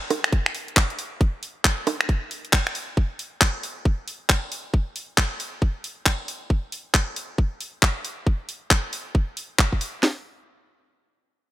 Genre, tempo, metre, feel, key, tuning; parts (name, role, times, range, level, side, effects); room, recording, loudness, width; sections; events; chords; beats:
UK garage; 136 BPM; 4/4; swing 62% on 16ths
garage drum kit; drums; 0.1-9.9 s; bongos, finger snaps, handclaps, hi-hat; -23 LUFS; equal
garage drum kit; drums; 0.3-10.2 s; hi-hat, kick drum, snare drum; -21 LUFS; equal
light reverb; bright 1980s-style digital production; -22 LUFS; side -15 dB against mid
0.0-10.0 A section; 10.0-11.5 B section
0.32 0.77 | 1.21 1.65 2.09 2.53 | 2.97 3.41 3.85 4.29 | 4.74 5.18 5.62 6.06 | 6.50 6.94 7.38 7.82 | 8.27 8.71 9.15 9.59 | 10.03